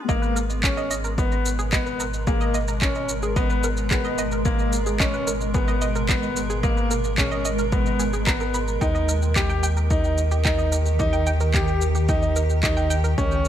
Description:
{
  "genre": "piano and strings electronica",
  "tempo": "110 BPM",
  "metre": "4/4",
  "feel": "straight",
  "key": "G# harmonic minor",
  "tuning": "A4 = 442 Hz",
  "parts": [
    { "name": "granular cloud pad", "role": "sustained chords", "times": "0.0-13.5 s", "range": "B2 to A#4", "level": "-28 LUFS", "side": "right 1 dB", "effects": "built-in reverb, shimmer reverb" },
    { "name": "analog pluck", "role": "arpeggios", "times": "0.1-13.1 s", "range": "G4 to B5", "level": "-32 LUFS", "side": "right 4 dB", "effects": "chorus, sidechain pumping, digital delay, shimmer reverb" },
    { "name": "clear grand piano", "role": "riff", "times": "0.1-13.5 s", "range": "A#3 to G4", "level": "-27 LUFS", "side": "left 2 dB", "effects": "digital delay, shimmer reverb" },
    { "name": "warm sub bass", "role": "bass", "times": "0.1-13.5 s", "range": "G#1 to D#2", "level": "-25 LUFS", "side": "equal", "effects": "sidechain pumping, high-pass filter" },
    { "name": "electronic kick drum", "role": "drums", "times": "0.1-13.3 s", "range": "none", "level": "-25 LUFS", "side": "equal", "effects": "overdrive" },
    { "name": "electronic shaker and handclaps", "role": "drums", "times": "0.1-13.5 s", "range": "none", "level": "-28 LUFS", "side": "equal", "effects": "overdrive" }
  ],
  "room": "light reverb, digital ambience",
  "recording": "high-pass filter",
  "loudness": "-20 LUFS",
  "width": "side -10 dB against mid",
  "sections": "0.1-13.5 A section",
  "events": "drop 0.1-13.5",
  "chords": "0.1 G#madd9; 8.8 D#"
}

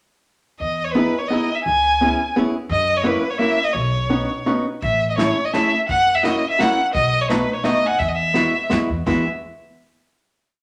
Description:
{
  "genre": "musette waltz",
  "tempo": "170 BPM",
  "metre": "3/4",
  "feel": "rubato",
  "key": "E major",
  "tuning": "A4 = 441 Hz",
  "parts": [
    { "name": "rich violin", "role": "melody", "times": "0.6-9.2 s", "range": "B4 to G#5", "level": "-22 LUFS", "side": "equal", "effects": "none" },
    { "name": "upright bass", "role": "bass", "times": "0.6-9.2 s", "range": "F#1 to F#2", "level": "-29 LUFS", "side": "equal", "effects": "none" },
    { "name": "archtop guitar, miked and amplified", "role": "accompaniment", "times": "1.0-9.2 s", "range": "G#3 to G#4", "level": "-23 LUFS", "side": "equal", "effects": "none" },
    { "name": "soft brush drum kit", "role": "drums", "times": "4.8-9.2 s", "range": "crash cymbal, hi-hat, kick drum, snare drum", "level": "-30 LUFS", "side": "equal", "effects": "none" }
  ],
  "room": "wet large studio reverb, RT60 0.9 s",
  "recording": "none",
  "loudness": "-19 LUFS",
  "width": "mono",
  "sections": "0.6-9.1 A section; 9.1-10.1 final chord",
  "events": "none",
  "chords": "0.6 Emaj7; 1.7 C#m7; 2.7 F#7; 3.7 Badd9; 4.8 Amaj7; 5.9 F#7; 7.0 B7; 8.0 Eadd9"
}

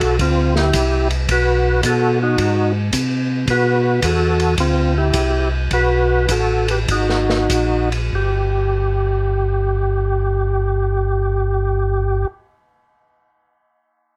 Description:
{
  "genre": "soul jazz organ trio",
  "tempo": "93-110 BPM",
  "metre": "4/4",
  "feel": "swing 67% on 8ths",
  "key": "unclear",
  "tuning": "A4 = 435 Hz",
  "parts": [
    { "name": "overdriven tonewheel organ", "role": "melody", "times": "0.0-12.3 s", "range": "C4 to B4", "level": "-21 LUFS", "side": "equal", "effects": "slow rotary speaker, chorus vibrato" },
    { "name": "mellow tonewheel organ", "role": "bass", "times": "0.0-12.3 s", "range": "G1 to C3", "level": "-21 LUFS", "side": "equal", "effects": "slow rotary speaker" },
    { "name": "vintage drum kit", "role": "drums", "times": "0.0-8.0 s", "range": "hi-hat, kick drum, ride cymbal, snare drum", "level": "-26 LUFS", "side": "equal", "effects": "none" }
  ],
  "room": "light reverb",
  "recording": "none",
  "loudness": "-18 LUFS",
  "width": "mono",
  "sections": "0.0-8.1 A section; 8.1-13.3 B section",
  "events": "slowing down 3.5-8.1",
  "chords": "0.2 D7sus4; 1.3 B5; 2.4 Ab; 3.5 B5; 4.6 D7sus4; 5.7 B5; 6.9 Absus2; 8.1 N.C."
}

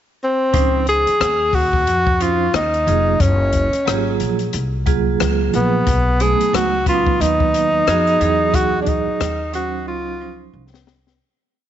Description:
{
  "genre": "hip hop, jazz-hop",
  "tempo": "90 BPM",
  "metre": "4/4",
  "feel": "swing 59% on 16ths",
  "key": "Db major",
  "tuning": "A4 = 440 Hz",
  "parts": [
    { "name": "breathy tenor saxophone", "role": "melody", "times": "0.2-10.5 s", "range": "Cb4 to Ab4", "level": "-17 LUFS", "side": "left 1 dB", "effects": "none" },
    { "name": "vibraphone with medium hard mallets", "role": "accompaniment", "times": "0.5-10.6 s", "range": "F3 to C5", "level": "-22 LUFS", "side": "right 10 dB", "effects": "none" },
    { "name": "upright bass", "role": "bass", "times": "0.5-11.2 s", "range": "F1 to F2", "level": "-21 LUFS", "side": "equal", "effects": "none" },
    { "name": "open jazz drum kit", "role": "drums", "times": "0.5-11.2 s", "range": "hi-hat, kick drum, rim click, snare drum", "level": "-23 LUFS", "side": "left 3 dB", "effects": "none" }
  ],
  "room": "light reverb",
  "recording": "1960s-style stereo, nothing above 7.8 kHz",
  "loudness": "-15 LUFS",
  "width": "side -10 dB against mid",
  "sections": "0.0-0.5 pickup bar; 0.5-11.2 A section",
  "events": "fade-out 8.5-11.2; drum fill 9.9-11.2",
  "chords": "0.0 N.C.; 0.5 Dbmaj9; 3.2 Gbmaj9; 5.9 Cb7; 8.2 Emaj9; 9.9 Dbmaj9"
}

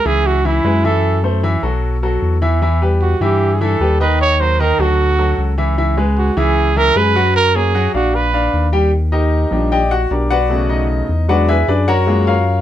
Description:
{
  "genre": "jazz",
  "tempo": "152 BPM",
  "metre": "4/4",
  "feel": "straight",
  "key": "unclear",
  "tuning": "A4 = 440 Hz",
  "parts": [
    { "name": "mellow trumpet", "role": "melody", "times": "0.0-8.7 s", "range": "E4 to C#5", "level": "-16 LUFS", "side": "right 4 dB", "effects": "none" },
    { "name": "clear baby grand piano", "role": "accompaniment", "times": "0.1-12.6 s", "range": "B2 to G5", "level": "-17 LUFS", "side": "left 1 dB", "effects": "none" },
    { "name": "sub bass with octave", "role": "bass", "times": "0.1-12.6 s", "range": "A#1 to G2", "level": "-16 LUFS", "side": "left 1 dB", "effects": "none" }
  ],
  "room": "light reverb",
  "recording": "none",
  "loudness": "-13 LUFS",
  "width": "side -11 dB against mid",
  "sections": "0.0-8.9 A section; 8.9-12.6 B section",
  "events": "grand piano solo 8.9-12.6",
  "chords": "0.0 C#m7; 1.0 F#m7b5; 1.8 B5; 2.6 Em; 4.2 D#m; 5.0 Dadd9; 5.8 C#m7; 7.3 F#; 8.1 A#; 8.9 Ebmaj9; 10.5 Bm7; 11.3 E9; 12.1 Gbmaj7"
}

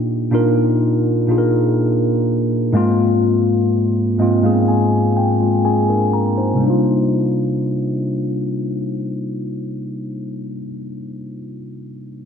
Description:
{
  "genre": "R&B",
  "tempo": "62 BPM",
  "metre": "4/4",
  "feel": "straight",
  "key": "C minor",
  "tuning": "A4 = 443 Hz",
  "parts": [
    { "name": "mellow tine electric piano", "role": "solo", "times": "0.0-12.3 s", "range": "Ab2 to Bb5", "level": "-16 LUFS", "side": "left 1 dB", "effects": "wide subtle chorus, low-pass filter" }
  ],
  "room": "moderate lush hall reverb, RT60 1.8 s",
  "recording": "dreamy mix soaked in reverb",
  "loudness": "-15 LUFS",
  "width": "side -7 dB against mid",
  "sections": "0.0-6.6 A section; 6.6-10.5 B section",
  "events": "filter sweep on tine electric piano 0.0-6.6; tine electric piano fill 3.7-6.6",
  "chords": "0.0 Ebmaj9/Bb; 2.7 Ab69; 6.6 Cm11"
}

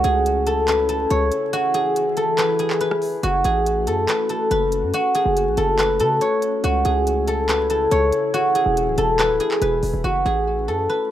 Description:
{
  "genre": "hip hop, trap",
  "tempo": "141 BPM",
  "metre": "4/4",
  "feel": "half-time",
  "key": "F# minor",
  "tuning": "A4 = 440 Hz",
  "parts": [
    { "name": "guzheng", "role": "melody", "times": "0.0-11.1 s", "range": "F#4 to C#5", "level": "-18 LUFS", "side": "equal", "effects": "ping-pong delay" },
    { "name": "glassy FM pad", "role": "sustained chords", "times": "0.0-11.1 s", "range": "C#3 to B4", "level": "-29 LUFS", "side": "equal", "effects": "ensemble chorus, built-in reverb" },
    { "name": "hard-hitting 808-style bass", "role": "bass", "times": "0.0-10.9 s", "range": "D1 to C#3", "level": "-24 LUFS", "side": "equal", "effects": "none" },
    { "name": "trap drum kit", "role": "drums", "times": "0.0-9.9 s", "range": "handclaps, hi-hat, rim click", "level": "-28 LUFS", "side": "equal", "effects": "none" }
  ],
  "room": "little or no reverb",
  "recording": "rough home demo mix, vinyl crackle",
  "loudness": "-17 LUFS",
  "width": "side -11 dB against mid",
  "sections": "0.0-10.0 A section; 10.0-11.1 B section",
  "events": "kick muted 1.5-3.2; drum fill 9.6-10.0",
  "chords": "0.0 C#m; 1.5 E; 3.2 F#m; 6.6 C#m; 8.3 E; 10.0 F#m"
}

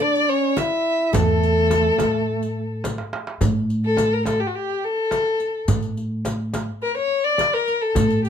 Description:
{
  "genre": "Turkish makam ensemble",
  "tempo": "106 BPM",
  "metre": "4/4",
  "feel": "straight",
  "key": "A makam hicaz",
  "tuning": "A4 = 440 Hz",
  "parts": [
    { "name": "dark violin", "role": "melody", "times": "0.0-8.3 s", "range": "F#4-41c to E5", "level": "-20 LUFS", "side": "left 3 dB", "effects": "none" },
    { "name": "mellow duduk", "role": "second line", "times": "0.0-2.8 s", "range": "A3 to E4", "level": "-25 LUFS", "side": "right 8 dB", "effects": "none" },
    { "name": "qanun", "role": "second line", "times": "0.0-2.8 s", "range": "G4 to E5", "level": "-33 LUFS", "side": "right 4 dB", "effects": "none" },
    { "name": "riq", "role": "percussion", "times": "0.2-8.3 s", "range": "none", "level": "-34 LUFS", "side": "left 4 dB", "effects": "none" },
    { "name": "darbuka", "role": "percussion", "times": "0.6-8.3 s", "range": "none", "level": "-28 LUFS", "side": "right 4 dB", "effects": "none" },
    { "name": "frame drum", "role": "percussion", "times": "0.6-8.1 s", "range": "none", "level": "-27 LUFS", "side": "left 2 dB", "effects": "none" },
    { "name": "upright bass", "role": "bass", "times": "1.1-8.3 s", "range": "E2 to A2", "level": "-23 LUFS", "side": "equal", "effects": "none" }
  ],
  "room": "light reverb",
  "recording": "close, detailed microphones",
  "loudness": "-19 LUFS",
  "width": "side -8 dB against mid",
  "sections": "0.0-3.4 A section; 3.4-8.3 B section",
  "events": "drum fill 2.8-3.4",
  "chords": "none"
}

